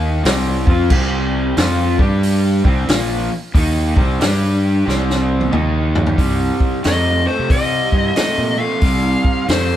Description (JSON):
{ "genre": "blues rock power trio and southern rock", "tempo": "91 BPM", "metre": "4/4", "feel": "swing 64% on 8ths", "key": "C minor", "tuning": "A4 = 440 Hz", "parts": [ { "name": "raw garage guitar", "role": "riff", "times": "0.0-9.8 s", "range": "Bb2 to G4", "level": "-20 LUFS", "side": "equal", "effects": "overdrive" }, { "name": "fuzz fingered electric bass", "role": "bass", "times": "0.0-9.8 s", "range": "Bb1 to C3", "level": "-18 LUFS", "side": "equal", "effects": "overdrive" }, { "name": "vintage drum kit", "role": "drums", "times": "0.2-9.7 s", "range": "crash cymbal, hi-hat, kick drum, snare drum, toms", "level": "-18 LUFS", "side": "equal", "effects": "none" }, { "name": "dark smooth lead guitar", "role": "melody", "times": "6.9-9.8 s", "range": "C5 to F5", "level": "-19 LUFS", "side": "left 2 dB", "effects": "overdrive" } ], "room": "light reverb", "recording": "band playing live in one room", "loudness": "-14 LUFS", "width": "side -11 dB against mid", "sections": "0.0-6.2 A section; 6.2-9.8 B section", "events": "drum fill 4.9-6.2; lead electric guitar solo 6.2-9.8", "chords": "0.3 C5; 1.9 G5; 2.6 Cm; 4.2 G5; 4.9 C5; 5.5 Eb5; 6.2 Cm", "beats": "0.25 | 0.91 1.57 2.23 2.88 | 3.54 4.20 4.86 5.52 | 6.18 6.83 7.50 8.15 | 8.81 9.47" }